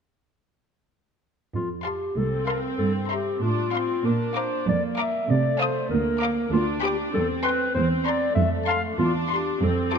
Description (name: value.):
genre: quick classical-period movement for symphony orchestra.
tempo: 96 BPM.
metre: 2/4.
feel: straight.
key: F major, C major from 6.5 s.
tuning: A4 = 441 Hz.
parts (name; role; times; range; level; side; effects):
dark studio cello section; bass; 1.5-10.0 s; C2 to C3; -26 LUFS; right 3 dB; none.
mellow clarinet; second line; 1.6-10.0 s; F4 to F5; -26 LUFS; left 3 dB; none.
dark studio violin section; melody; 1.9-10.0 s; C6 to Eb6; -32 LUFS; left 4 dB; none.
warm studio violin section; second line; 1.9-10.0 s; E5 to C6; -34 LUFS; left 4 dB; none.
warm studio viola section; accompaniment; 2.2-10.0 s; A3 to D4; -30 LUFS; right 2 dB; none.
room: moderate concert hall reverb, RT60 2.3 s.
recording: none.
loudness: -22 LUFS.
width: side -6 dB against mid.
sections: 1.5-10.0 A section.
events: none.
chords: 1.5 F; 2.8 C7/G; 3.4 F/A; 4.1 Bb; 5.3 F7/C; 5.9 Bb/D; 6.5 G7/D; 7.1 C/E; 8.4 F; 9.0 C/E.